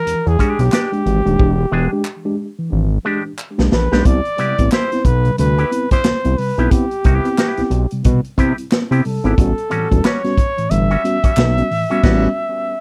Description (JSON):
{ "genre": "funk", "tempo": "90 BPM", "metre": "4/4", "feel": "swing 60% on 16ths", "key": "unclear", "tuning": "A4 = 440 Hz", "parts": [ { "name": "breathy trumpet", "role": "melody", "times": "0.0-12.8 s", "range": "G4 to E5", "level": "-23 LUFS", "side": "equal", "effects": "none" }, { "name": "mellow tine electric piano", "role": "stabs", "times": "0.1-12.3 s", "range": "A2 to G4", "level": "-23 LUFS", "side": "equal", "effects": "tape echo" }, { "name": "fat analog bass", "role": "bass", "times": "0.1-12.3 s", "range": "D#1 to C3", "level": "-18 LUFS", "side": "equal", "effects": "none" }, { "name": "swinging big-band drum kit", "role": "drums", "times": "0.1-12.3 s", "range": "crash cymbal, hi-hat, kick drum, snare drum", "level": "-18 LUFS", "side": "equal", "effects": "none" }, { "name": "electric guitar with an envelope filter", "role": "accompaniment", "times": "0.4-12.3 s", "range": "G3 to G#4", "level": "-26 LUFS", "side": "equal", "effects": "none" }, { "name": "group handclap", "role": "percussion", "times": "0.7-11.6 s", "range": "none", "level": "-32 LUFS", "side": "equal", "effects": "none" } ], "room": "little or no reverb", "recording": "none", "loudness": "-16 LUFS", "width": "mono", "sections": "0.0-4.1 A section; 4.1-12.8 B section", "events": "trumpet solo 0.0-4.1; drum fill 1.4-4.1; band accent 12.0-12.8", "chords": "0.0 E7#9; 4.1 Cmaj7; 9.4 A13" }